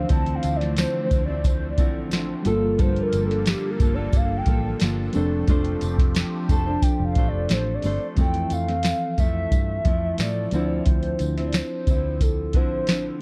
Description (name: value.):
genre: indie pop, bedroom pop.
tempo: 89 BPM.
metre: 4/4.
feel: straight.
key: F major.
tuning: A4 = 440 Hz.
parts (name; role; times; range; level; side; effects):
hollow clarinet-like synth lead; melody; 0.0-13.2 s; G4 to A5; -31 LUFS; equal; analog chorus.
nylon-string guitar; accompaniment; 0.0-13.2 s; G2 to C5; -32 LUFS; equal; subtle chorus, vibrato effect.
reed electric piano; accompaniment; 0.0-13.2 s; E3 to C5; -33 LUFS; equal; fast tremolo.
phased analog pad; sustained chords; 0.0-8.1 s; D3 to A4; -37 LUFS; equal; phaser, chorus.
picked electric bass; bass; 0.0-13.1 s; F1 to A2; -30 LUFS; equal; none.
soft vintage rhythm box; drums; 0.1-13.0 s; hi-hat, kick drum, snare drum; -24 LUFS; equal; none.
tambourine; percussion; 0.1-13.0 s; none; -46 LUFS; equal; none.
room: digital ambience.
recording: dark, warm production.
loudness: -23 LUFS.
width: mono.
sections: 0.0-8.2 A section; 8.2-13.2 B section.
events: soft synth lead solo 0.0-8.2.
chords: 0.0 Dm9; 2.5 Gm9; 5.1 F6; 8.2 Fmaj7; 10.5 Dm9.